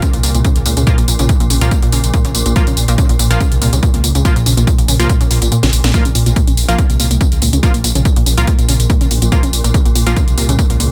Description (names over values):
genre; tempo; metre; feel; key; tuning
driving peak-time techno; 142 BPM; 4/4; straight; Bb minor; A4 = 440 Hz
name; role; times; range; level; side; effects
analog pluck; riff; 0.0-10.8 s; Bb2 to Db3; -22 LUFS; equal; chorus, overdrive, vintage 12-bit sampler grit, sidechain pumping, digital delay
swarming drone; drone; 0.0-10.9 s; Bb2; -24 LUFS; equal; built-in reverb, sidechain pumping
electronic kick drum; drums; 0.0-10.7 s; none; -16 LUFS; equal; none
techno drum kit; drums; 0.0-10.9 s; hi-hat, snare drum, tambourine; -22 LUFS; equal; none
detuned saw bass; bass; 0.1-10.9 s; Bb1 to Db2; -18 LUFS; equal; sidechain pumping
supersaw stab; stabs; 0.9-10.1 s; F3 to F4; -24 LUFS; equal; sidechain pumping, delay
room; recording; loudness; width
digital ambience; none; -13 LUFS; mono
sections
0.0-10.9 A section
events
kick drops out 5.5-5.9; drum fill 5.6-5.9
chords
0.0 Bb5